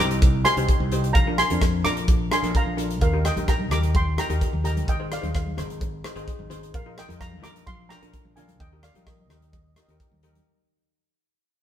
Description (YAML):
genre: calypso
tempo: 129 BPM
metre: 4/4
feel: straight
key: Eb major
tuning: A4 = 439 Hz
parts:
  - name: steel pan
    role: melody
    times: 0.0-9.9 s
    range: Bb4 to D6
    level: -26 LUFS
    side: right 2 dB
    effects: none
  - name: steel pan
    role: accompaniment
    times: 0.0-10.4 s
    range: D4 to C5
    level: -31 LUFS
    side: left 2 dB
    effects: none
  - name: modern bright fingered electric bass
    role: bass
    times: 0.0-10.4 s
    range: Ab1 to F2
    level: -26 LUFS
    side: equal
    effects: none
  - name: modern studio drum kit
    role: drums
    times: 0.1-10.5 s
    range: hi-hat, kick drum, rim click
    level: -23 LUFS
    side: equal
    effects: none
  - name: congas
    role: percussion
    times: 3.4-10.5 s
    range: none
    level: -37 LUFS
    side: equal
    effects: none
room: moderate stone room reverb, RT60 1.4 s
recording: band playing live in one room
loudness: -20 LUFS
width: side -10 dB against mid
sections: 0.0-10.5 A section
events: fade-out 0.0-10.5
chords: 0.0 Cm7; 1.2 Bb7; 3.0 Eb; 4.9 Ab; 6.7 Bbsus4; 7.7 Bb; 8.6 Eb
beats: 0.22 0.69 | 1.15 1.62 2.08 2.55 | 3.01 3.48 3.94 4.41 | 4.88 5.34 5.81 6.27 | 6.74 7.20 7.67 8.13 | 8.60 9.07 9.53 10.00